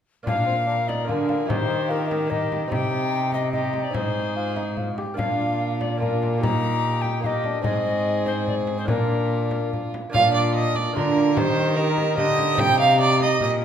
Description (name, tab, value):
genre	classical, renaissance-style consort dance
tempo	146 BPM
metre	3/4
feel	straight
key	Bb mixolydian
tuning	A4 = 439 Hz
part	lute	accompaniment	0.2-13.6 s	Ab2 to Eb5	-29 LUFS	right 4 dB	none
part	alto recorder	melody	0.3-13.6 s	F4 to Bb5	-27 LUFS	left 4 dB	none
part	warm violin	second line	0.3-13.5 s	F4 to G5	-25 LUFS	right 3 dB	none
part	warm bassoon	accompaniment	0.3-13.6 s	C4 to G4	-30 LUFS	left 4 dB	none
part	dark cello	bass	0.3-13.6 s	Ab2 to Eb3	-26 LUFS	right 1 dB	none
part	frame drum	percussion	0.3-13.6 s	none	-31 LUFS	left 2 dB	none
room	wet recital hall reverb, RT60 1.4 s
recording	none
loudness	-20 LUFS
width	side -8 dB against mid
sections	0.3-10.1 A section; 10.1-13.6 A section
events	none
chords	0.3 Bb; 1.5 Eb; 2.7 Cm; 3.9 Ab; 5.2 Bb; 6.4 Eb/Bb; 7.7 Ab; 8.9 Bb; 11.4 Eb; 12.6 Cm